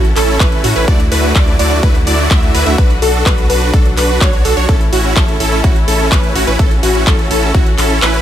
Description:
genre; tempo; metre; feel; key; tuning
EDM, festival progressive house; 126 BPM; 4/4; straight; A major; A4 = 440 Hz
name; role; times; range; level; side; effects
dark chamber string section; sustained chords; 0.0-8.2 s; A2 to A4; -23 LUFS; left 2 dB; sidechain pumping
plucky unison lead; arpeggios; 0.0-8.2 s; F#4 to E5; -19 LUFS; equal; phaser, sidechain pumping, ping-pong delay
supersaw chords; riff; 0.0-8.2 s; A3 to E5; -16 LUFS; right 1 dB; sidechain pumping, ping-pong delay
saturated sub bass; bass; 0.0-8.2 s; A1 to A2; -17 LUFS; equal; sidechain pumping
big-room dance drum kit; drums; 0.0-8.2 s; handclaps, hi-hat; -20 LUFS; equal; overdrive
electronic kick drum; drums; 0.4-7.6 s; none; -12 LUFS; equal; overdrive
room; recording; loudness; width
little or no reverb; none; -9 LUFS; side -11 dB against mid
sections
0.0-8.2 A section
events
kick drops out 8.0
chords
0.0 A; 0.9 Dadd9; 2.8 Bm; 4.7 A

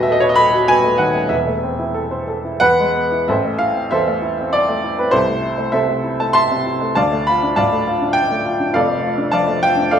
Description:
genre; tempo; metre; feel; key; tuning
classical, romantic character piece for solo piano; 90-106 BPM; 3/4; rubato; A minor; A4 = 440 Hz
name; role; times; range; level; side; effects
warm upright piano; solo; 0.0-10.0 s; D#1 to C6; -14 LUFS; equal; none
room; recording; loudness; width
wet recital hall reverb, RT60 1.6 s; minimal, uncompressed stereo recording; -15 LUFS; side -8 dB against mid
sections
0.0-3.3 A section; 3.3-10.0 B section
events
none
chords
0.0 B7/D#; 1.3 Am/E; 2.6 E; 3.3 Am; 5.1 Am/C; 7.0 Dm; 8.7 Dm/F

